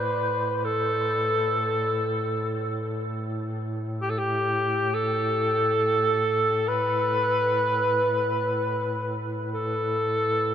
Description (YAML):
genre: caucasian folk, Caucasian lament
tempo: free time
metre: none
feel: none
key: unclear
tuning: A4 = 440 Hz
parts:
  - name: mellow cor anglais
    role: melody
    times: 0.0-10.5 s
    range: G4 to B4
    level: -24 LUFS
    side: equal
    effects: none
  - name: mellow duduk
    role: drone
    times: 0.0-10.5 s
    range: A2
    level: -30 LUFS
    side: equal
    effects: none
room: wet huge ambient reverb, RT60 8.7 s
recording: in a vast, echoing space, nothing above 7.6 kHz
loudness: -23 LUFS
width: side -9 dB against mid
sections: 0.0-10.5 A section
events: none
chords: none